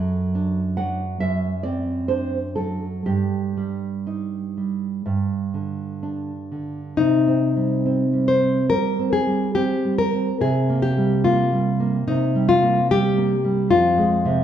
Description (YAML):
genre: romantic duo for nylon-string guitar and classical guitar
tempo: 59-77 BPM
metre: 4/4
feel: rubato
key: C minor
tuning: A4 = 440 Hz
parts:
  - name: nylon-string guitar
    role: accompaniment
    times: 0.0-14.4 s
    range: F2 to F#5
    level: -21 LUFS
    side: right 3 dB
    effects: none
  - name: nylon-string guitar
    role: melody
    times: 7.0-14.4 s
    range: Eb4 to C5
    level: -20 LUFS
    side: left 4 dB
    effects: none
room: wet recital hall reverb, RT60 1.4 s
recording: recorded in a church or concert hall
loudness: -19 LUFS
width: side -9 dB against mid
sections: 0.0-7.0 A section; 7.0-14.4 B section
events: none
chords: 0.0 D7/F#; 3.1 Eb/G; 5.1 G5; 7.0 Cm; 10.4 C7(no3); 13.7 Fm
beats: 0.34 1.20 2.09 | 3.06 4.06 5.05 6.02 | 6.97 7.85 8.71 9.56 | 10.41 11.25 12.07 12.90 | 13.71